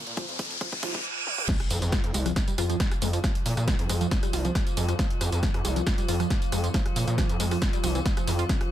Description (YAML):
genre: driving peak-time techno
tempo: 137 BPM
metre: 4/4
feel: straight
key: unclear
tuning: A4 = 441 Hz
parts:
  - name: gritty driven synth bass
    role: bass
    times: 0.0-8.4 s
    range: C2 to Bb2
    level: -28 LUFS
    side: equal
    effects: distortion, sidechain pumping
  - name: riser, reverse cymbal and impact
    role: sound effects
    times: 0.0-3.2 s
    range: none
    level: -32 LUFS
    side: right 1 dB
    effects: none
  - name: punchy analog drum machine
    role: drums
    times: 0.1-8.7 s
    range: crash cymbal, hi-hat, rim click, snare drum, tambourine, toms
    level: -32 LUFS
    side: equal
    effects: high-pass filter on hats, high-pass filter on snare, high-pass filter on toms, high-pass filter on cymbals, high-pass filter on perc
  - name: tight sequenced synth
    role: riff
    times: 0.2-8.6 s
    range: Db3 to F4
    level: -34 LUFS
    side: equal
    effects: chorus, tube saturation, sidechain pumping, dub echo
  - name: electronic kick drum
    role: drums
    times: 0.2-8.6 s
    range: none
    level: -28 LUFS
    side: equal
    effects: none
  - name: metallic inharmonic drone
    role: drone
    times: 2.3-8.7 s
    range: F3 to F4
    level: -35 LUFS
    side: right 2 dB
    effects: chorus, built-in reverb, sidechain pumping
room: little or no reverb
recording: dense, heavily limited modern master, high-pass filter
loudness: -24 LUFS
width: side -12 dB against mid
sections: 0.0-1.5 A section; 1.5-8.7 B section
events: build-up 0.0-1.5; drum fill 0.0-1.0, 1.3; riser 0.0-1.0; reverse cymbal 0.6-1.5; drop 1.5-8.7; impact 1.5-3.2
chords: 0.0 F5; 1.5 N.C.